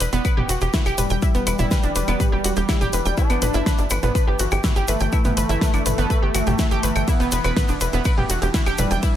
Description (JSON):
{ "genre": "melodic techno", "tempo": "123 BPM", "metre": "4/4", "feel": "straight", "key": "E minor", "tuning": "A4 = 440 Hz", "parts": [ { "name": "analog pluck", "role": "arpeggios", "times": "0.0-9.1 s", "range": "B3 to G5", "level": "-25 LUFS", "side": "right 1 dB", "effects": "chorus, cassette tape, sidechain pumping, tape echo" }, { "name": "tight sequencer bass", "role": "bass", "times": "0.0-9.0 s", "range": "E1 to G1", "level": "-23 LUFS", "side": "equal", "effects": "sidechain pumping" }, { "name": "analog drone", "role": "drone", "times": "0.1-9.2 s", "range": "E2 to E3", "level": "-34 LUFS", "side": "equal", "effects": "chorus, phaser, sidechain pumping" }, { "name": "deep house drum kit", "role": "drums", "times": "0.0-9.1 s", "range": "claves, hi-hat, ride cymbal, snare drum, toms", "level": "-26 LUFS", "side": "equal", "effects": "none" }, { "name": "tube shaker", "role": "percussion", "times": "0.0-9.1 s", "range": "none", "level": "-33 LUFS", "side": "right 3 dB", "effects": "none" }, { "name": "electronic kick drum", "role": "drums", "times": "0.2-9.1 s", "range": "none", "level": "-21 LUFS", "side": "equal", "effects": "none" }, { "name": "wide unison lead", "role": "melody", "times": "1.0-9.2 s", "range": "G3 to D4", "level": "-27 LUFS", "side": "equal", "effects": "wide subtle chorus, cassette tape, ping-pong delay" }, { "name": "granular cloud pad", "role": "texture", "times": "7.9-9.2 s", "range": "D4", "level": "-38 LUFS", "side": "left 2 dB", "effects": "none" } ], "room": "light reverb", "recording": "none", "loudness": "-18 LUFS", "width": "side -11 dB against mid", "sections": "0.0-9.2 A section", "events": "none", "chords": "0.0 Em; 3.2 Gadd9; 7.1 Em" }